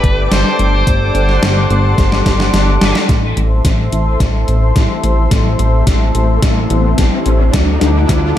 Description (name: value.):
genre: synthwave.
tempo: 108 BPM.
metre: 4/4.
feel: straight.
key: A dorian.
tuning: A4 = 440 Hz.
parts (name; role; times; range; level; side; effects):
smooth overdriven lead guitar; melody; 0.0-3.0 s; B4 to C5; -20 LUFS; equal; diffuse ambient delay.
lush unison pad; sustained chords; 0.0-8.4 s; A4 to D6; -20 LUFS; left 2 dB; chorus, sidechain pumping.
analog synth brass; stabs; 0.0-8.4 s; E3 to A4; -23 LUFS; left 1 dB; chorus, diffuse ambient delay.
chorused synth bass; bass; 0.0-8.3 s; G1 to D2; -14 LUFS; equal; sidechain pumping.
electronic kick drum; drums; 0.0-8.2 s; none; -15 LUFS; equal; overdrive.
gated 80s digital drum machine; drums; 0.0-8.2 s; hi-hat, snare drum; -19 LUFS; equal; gated reverb, gated reverb snare, overdrive.
riser; sound effects; 5.2-8.4 s; none; -21 LUFS; left 2 dB; none.
room: moderate plate reverb, RT60 2.1 s.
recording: dreamy mix soaked in reverb.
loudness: -10 LUFS.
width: side -11 dB against mid.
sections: 0.0-3.1 A section; 3.1-8.4 B section.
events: drum fill 2.0-3.1, 3.1-8.4; kick drops out 2.5-3.1; filter sweep on analog polysynth 3.1-8.4; riser 5.2-8.4.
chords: 0.0 Gsus2; 3.1 Am; 7.5 D.